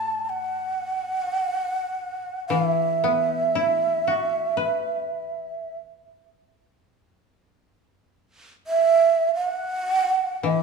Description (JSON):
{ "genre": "japanese traditional, Japanese chamber music", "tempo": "free time", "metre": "none", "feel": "none", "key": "unclear", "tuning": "A4 = 441 Hz", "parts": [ { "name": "breathy mellow shakuhachi", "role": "melody", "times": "0.0-10.6 s", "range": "E5 to A5", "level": "-22 LUFS", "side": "right 4 dB", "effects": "none" }, { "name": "koto", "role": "accompaniment", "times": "0.0-10.6 s", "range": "A2 to B4", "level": "-27 LUFS", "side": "left 6 dB", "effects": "none" } ], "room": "moderate recital hall reverb, RT60 1.6 s", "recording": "small room ambience", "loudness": "-21 LUFS", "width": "side -4 dB against mid", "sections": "0.0-10.6 A section", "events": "slowing down 5.2-10.6", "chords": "none" }